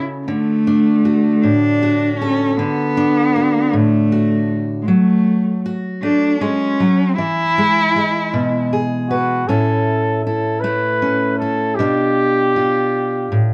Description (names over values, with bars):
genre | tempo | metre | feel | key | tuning
acoustic folk duo or small band | 52 BPM (dotted quarters) | 6/8 | straight | A major | A4 = 440 Hz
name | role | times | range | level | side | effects
fingerpicked steel-string acoustic guitar | accompaniment | 0.0-13.5 s | A2 to B4 | -20 LUFS | equal | none
warm cello | second line | 0.3-8.7 s | G#3 to E4 | -19 LUFS | equal | none
warm flugelhorn | melody | 9.1-13.4 s | F#4 to B4 | -20 LUFS | equal | none
room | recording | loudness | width
moderate large studio reverb, RT60 0.9 s | close, detailed microphones | -17 LUFS | mono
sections
0.0-9.5 A section; 9.5-13.5 B section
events
cello solo 0.0-9.5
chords
0.3 D; 4.9 F#m; 7.2 E; 9.5 A; 11.8 G7/B